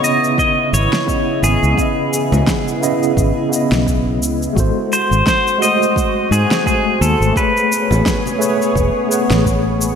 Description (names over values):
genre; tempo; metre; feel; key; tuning
sunset chillout; 86 BPM; 4/4; swing 57% on 16ths; C# minor; A4 = 440 Hz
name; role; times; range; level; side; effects
pedal steel guitar; melody; 0.0-8.7 s; G#4 to D#5; -18 LUFS; left 1 dB; lush chorus, digital delay
tine electric piano; accompaniment; 0.0-10.0 s; C#3 to F#5; -19 LUFS; moving between left 4 dB and right 4 dB; overdrive, fast stereo tremolo, auto-pan, digital delay
lush unison pad; sustained chords; 0.0-10.0 s; B3 to D#5; -22 LUFS; right 1 dB; chorus, phaser
electronic cabasa and snare drum; drums; 0.0-10.0 s; none; -22 LUFS; equal; none
electronic kick drum; drums; 0.4-9.6 s; none; -21 LUFS; equal; none
fingered electric bass; bass; 0.7-10.0 s; E1 to G#2; -16 LUFS; equal; none
congas; percussion; 2.3-2.4, 7.9-8.4 s; none; -26 LUFS; equal; none
room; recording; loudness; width
wet lush hall reverb, RT60 1.9 s; bright 1980s-style digital production; -13 LUFS; side -7 dB against mid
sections
0.0-10.0 A section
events
none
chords
0.0 C#m9; 4.6 G#7b9; 7.4 Amaj9